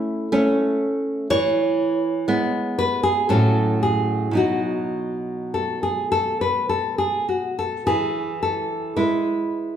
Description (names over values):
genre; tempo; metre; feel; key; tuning
romantic duo for nylon-string guitar and classical guitar; 51-61 BPM; 3/4; rubato; E major; A4 = 440 Hz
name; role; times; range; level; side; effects
nylon-string guitar; melody; 0.0-9.8 s; E4 to C#5; -22 LUFS; left 1 dB; none
nylon-string guitar; accompaniment; 0.0-9.8 s; A2 to E4; -22 LUFS; right 1 dB; none
room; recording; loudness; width
wet large studio reverb, RT60 1.3 s; band playing live in one room; -19 LUFS; side -9 dB against mid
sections
0.0-9.8 A section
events
none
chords
0.0 A; 1.3 E; 3.3 A6; 4.4 B; 7.9 E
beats
0.32 | 1.30 2.28 3.29 | 4.37 5.53 6.70 | 7.86 8.96